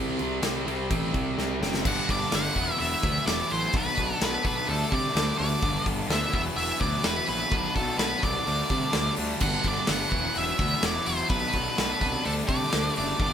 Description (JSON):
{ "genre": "quiet-loud alternative rock", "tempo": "127 BPM", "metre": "4/4", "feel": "straight", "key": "E minor", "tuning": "A4 = 440 Hz", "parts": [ { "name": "overdriven semi-hollow guitar", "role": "riff", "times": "0.0-13.3 s", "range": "G2 to E4", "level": "-30 LUFS", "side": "left 1 dB", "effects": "none" }, { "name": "fuzz picked electric bass", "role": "bass", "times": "0.0-13.3 s", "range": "E1 to C3", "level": "-31 LUFS", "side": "equal", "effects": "overdrive" }, { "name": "big rock drum kit", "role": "drums", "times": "0.2-13.3 s", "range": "crash cymbal, hi-hat, kick drum, snare drum", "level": "-29 LUFS", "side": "equal", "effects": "none" }, { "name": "octave-fuzz lead guitar", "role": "melody", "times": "1.9-13.3 s", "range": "A4 to F#5", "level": "-28 LUFS", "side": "right 1 dB", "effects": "distortion" } ], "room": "moderate studio reverb, RT60 0.6 s", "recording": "band playing live in one room", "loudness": "-24 LUFS", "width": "side -9 dB against mid", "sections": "0.0-1.8 A section; 1.8-13.3 B section", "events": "drum fill 1.4-1.8", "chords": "0.0 C5; 1.8 G; 2.6 Esus2; 3.7 Bm; 4.7 Dsus4; 5.6 G; 6.3 Esus2; 7.5 Bm; 8.5 Dsus4; 9.4 G; 10.1 Esus2; 11.3 Bm; 12.2 Dsus4" }